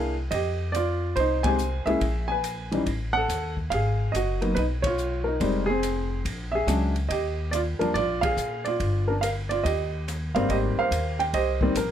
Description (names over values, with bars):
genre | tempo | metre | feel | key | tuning
jazz piano trio | 142 BPM | 4/4 | swing 66% on 8ths | Eb major | A4 = 440 Hz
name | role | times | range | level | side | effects
warm upright piano | melody | 0.0-11.9 s | Ab2 to Ab5 | -25 LUFS | right 1 dB | none
upright bass | bass | 0.0-11.9 s | F1 to Bb2 | -28 LUFS | equal | none
open jazz drum kit | drums | 0.3-11.9 s | hi-hat, kick drum, ride cymbal, rim click | -35 LUFS | left 1 dB | none
room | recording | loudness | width
light reverb | none | -23 LUFS | side -10 dB against mid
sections
0.0-10.5 A section; 10.5-11.9 B section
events
band accent 1.4, 4.8, 8.2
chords
0.3 Fm9; 2.0 Bb7(b5, no3); 2.9 Ebdim/A; 3.7 Abm7; 5.4 Fm7; 6.3 Bb7alt; 7.1 Ebmaj9; 9.6 Eb; 10.5 Abmaj9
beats
| 0.32 0.74 1.16 1.59 | 2.01 2.44 2.86 3.29 | 3.71 4.13 4.56 4.98 | 5.41 5.83 6.26 6.68 | 7.11 7.53 7.95 8.38 | 8.80 9.22 9.64 10.06 | 10.49 10.91 11.33 11.75